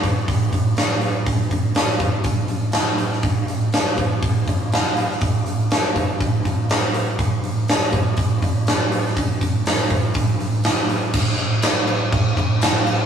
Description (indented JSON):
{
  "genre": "rock",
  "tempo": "122 BPM",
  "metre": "4/4",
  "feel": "straight",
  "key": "none",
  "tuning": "none",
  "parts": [
    { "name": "huge arena drum kit", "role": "drums", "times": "0.0-13.0 s", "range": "crash cymbal, hi-hat, kick drum, snare drum", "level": "-17 LUFS", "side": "right 1 dB", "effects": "none" },
    { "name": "tambourine", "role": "percussion", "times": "11.6-12.7 s", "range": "none", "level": "-32 LUFS", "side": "left 5 dB", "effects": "none" }
  ],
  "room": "light reverb",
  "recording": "rough rehearsal-room recording, tube saturation",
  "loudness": "-17 LUFS",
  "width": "side -8 dB against mid",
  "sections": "0.0-11.1 A section; 11.1-13.1 B section",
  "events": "none",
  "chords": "none",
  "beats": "0.29 0.78 | 1.27 1.76 2.26 2.75 | 3.24 3.74 4.23 4.72 | 5.22 5.71 6.20 6.70 | 7.19 7.68 8.18 8.67 | 9.17 9.66 10.15 10.65 | 11.14 11.63 12.13 12.62"
}